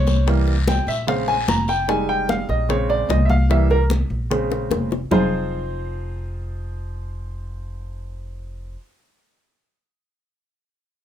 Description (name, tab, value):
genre	Afro-Cuban jazz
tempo	149 BPM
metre	4/4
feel	straight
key	F minor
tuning	A4 = 440 Hz
part	clear upright piano	accompaniment	0.0-8.8 s	Db3 to Bb5	-22 LUFS	right 1 dB	none
part	upright bass	bass	0.0-8.7 s	F1 to C2	-22 LUFS	equal	none
part	bongos	percussion	0.1-5.2 s	none	-27 LUFS	left 7 dB	none
part	congas	percussion	0.1-5.2 s	none	-25 LUFS	equal	none
part	guiro	percussion	0.1-1.9 s	none	-33 LUFS	left 5 dB	none
room	moderate club ambience, RT60 0.5 s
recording	none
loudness	-18 LUFS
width	side -10 dB against mid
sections	0.0-5.1 A section; 5.1-8.3 B section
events	upright piano solo 0.0-5.1; drum fill 4.5-5.1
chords	0.3 C7; 1.1 Bbm7; 1.9 Fm7; 2.7 Bbm7; 3.5 C7; 4.3 Bbm7; 5.1 Fm7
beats	| 0.27 0.67 1.08 1.48 | 1.88 2.29 2.69 3.09 | 3.50 3.90 4.30 4.71 | 5.11 5.52 5.92 6.32 | 6.73 7.13 7.54 7.94